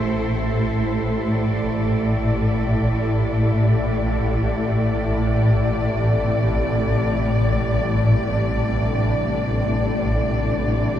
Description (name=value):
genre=dark ambient drone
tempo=free time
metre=none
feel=none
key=unclear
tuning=A4 = 442 Hz
part: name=warm studio cello section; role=sustained chords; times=0.0-11.0 s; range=C3 to D5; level=-24 LUFS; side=equal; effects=none
part: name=swarming drone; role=drone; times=0.0-11.0 s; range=A1 to A2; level=-20 LUFS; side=equal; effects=built-in reverb
room=wet huge ambient reverb, RT60 7.1 s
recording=none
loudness=-18 LUFS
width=side -10 dB against mid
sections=0.0-11.0 A section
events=none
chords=0.0 Am; 6.0 Csus2